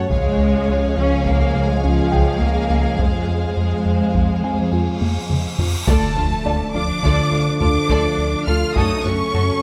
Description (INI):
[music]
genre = cinematic, hybrid orchestral and electronic film score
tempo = 104 BPM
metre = 5/4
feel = straight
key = unclear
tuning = A4 = 441 Hz
[part]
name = warm symphonic violin section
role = melody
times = 0.0-9.6 s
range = E#5 to F6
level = -29 LUFS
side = equal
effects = none
[part]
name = warm symphonic violin section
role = second line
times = 0.0-9.4 s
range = C#4 to D5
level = -30 LUFS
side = equal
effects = none
[part]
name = mellow trombone section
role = sustained chords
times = 0.0-9.6 s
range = C#3 to A3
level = -30 LUFS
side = equal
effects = none
[part]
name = warm symphonic double bass section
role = bass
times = 0.0-9.4 s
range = C#2 to F#2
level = -27 LUFS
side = equal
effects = none
[part]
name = felt-muted upright piano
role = texture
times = 0.0-9.6 s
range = G#4 to Ab5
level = -34 LUFS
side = equal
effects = none
[part]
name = warm symphonic viola section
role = accompaniment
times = 0.1-9.4 s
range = E#3 to F#4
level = -29 LUFS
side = equal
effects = none
[part]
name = harp-like synth pluck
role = arpeggios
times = 0.1-9.5 s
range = C#3 to F#4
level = -29 LUFS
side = equal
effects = chorus, tape echo
[part]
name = round analog bass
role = riff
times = 0.1-9.5 s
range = C#2 to F3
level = -25 LUFS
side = equal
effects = none
[part]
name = rich symphonic cello section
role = bass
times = 0.1-9.6 s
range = E#3 to F4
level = -28 LUFS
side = equal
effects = none
[part]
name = taiko ensemble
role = drums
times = 0.1-9.3 s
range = none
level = -26 LUFS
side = equal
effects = none
[part]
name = cymbal swell and impact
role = sound effects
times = 4.8-8.8 s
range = none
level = -31 LUFS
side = equal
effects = none
[part]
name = mellow French horn section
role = sustained chords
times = 5.9-9.6 s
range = A3 to A4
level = -29 LUFS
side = equal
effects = none
[sound]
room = light reverb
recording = close, detailed microphones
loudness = -18 LUFS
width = mono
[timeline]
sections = 0.0-5.9 A section; 5.9-9.6 A section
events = cymbal swell 4.8-5.9; drum fill 5.0-5.9; impact 5.9-8.8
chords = 0.1 C#; 3.0 Fm; 5.9 Dm; 8.8 F#m